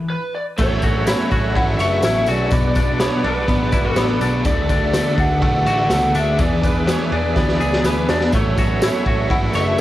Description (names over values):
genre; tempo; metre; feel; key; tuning
jangly indie pop; 124 BPM; 4/4; straight; A major; A4 = 442 Hz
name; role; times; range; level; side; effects
semi-hollow electric guitar; arpeggios; 0.0-9.8 s; B2 to C#5; -23 LUFS; left 3 dB; tremolo, cassette tape
lead guitar through a small cranked amp; melody; 0.1-9.8 s; B4 to F#5; -23 LUFS; equal; overdrive, tape echo
crunchy overdriven guitar; accompaniment; 0.6-9.8 s; A2 to G#4; -24 LUFS; right 4 dB; cassette tape
musette accordion; sustained chords; 0.6-9.8 s; A4 to D6; -29 LUFS; right 2 dB; cassette tape
vintage muted picked electric bass; bass; 0.6-9.8 s; F#1 to E2; -23 LUFS; equal; none
raw garage drum kit; drums; 0.6-9.7 s; crash cymbal, hi-hat, kick drum, ride cymbal, snare drum; -20 LUFS; equal; vintage 12-bit sampler grit, cassette tape
tambourine; percussion; 0.6-9.8 s; none; -38 LUFS; left 4 dB; none
room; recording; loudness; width
studio reverb; home recording on cassette; -15 LUFS; side -14 dB against mid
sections
0.6-9.8 A section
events
stop 0.0-0.6; drum fill 7.4-8.3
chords
0.0 E5; 0.6 A6; 2.5 Bm; 4.5 Dadd9; 6.4 E7; 8.3 A6